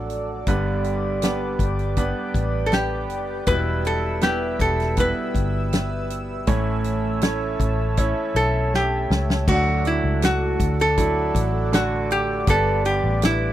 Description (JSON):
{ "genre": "pop ballad", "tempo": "80 BPM", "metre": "4/4", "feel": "straight", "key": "D major", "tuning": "A4 = 439 Hz", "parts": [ { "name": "metal-body resonator slide guitar", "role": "melody", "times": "0.0-13.5 s", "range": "E4 to B4", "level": "-23 LUFS", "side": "equal", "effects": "none" }, { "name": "bright concert grand piano", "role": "accompaniment", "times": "0.0-13.5 s", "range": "G2 to C#5", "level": "-26 LUFS", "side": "right 3 dB", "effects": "none" }, { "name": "chorused pulse-width pad", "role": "sustained chords", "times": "0.0-13.5 s", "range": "A4 to E6", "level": "-30 LUFS", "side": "equal", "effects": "none" }, { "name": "vintage muted fingered electric bass", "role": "bass", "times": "0.0-13.5 s", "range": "E1 to D2", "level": "-25 LUFS", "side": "left 1 dB", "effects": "none" }, { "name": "natural country drum kit", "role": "drums", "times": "0.1-13.4 s", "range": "crash cymbal, hi-hat, kick drum, snare drum", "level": "-23 LUFS", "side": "equal", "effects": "none" } ], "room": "small room ambience", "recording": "dry, close 1970s-style studio recording", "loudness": "-19 LUFS", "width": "side -12 dB against mid", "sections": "0.0-9.5 A section; 9.5-13.5 B section", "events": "drum fill 8.7-9.5", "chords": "0.5 G; 3.5 Em; 6.5 A; 9.5 D; 12.5 G", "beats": "| 0.47 1.22 1.97 2.72 | 3.47 4.22 4.97 5.72 | 6.47 7.22 7.97 8.72 | 9.47 10.22 10.97 11.72 | 12.47 13.22" }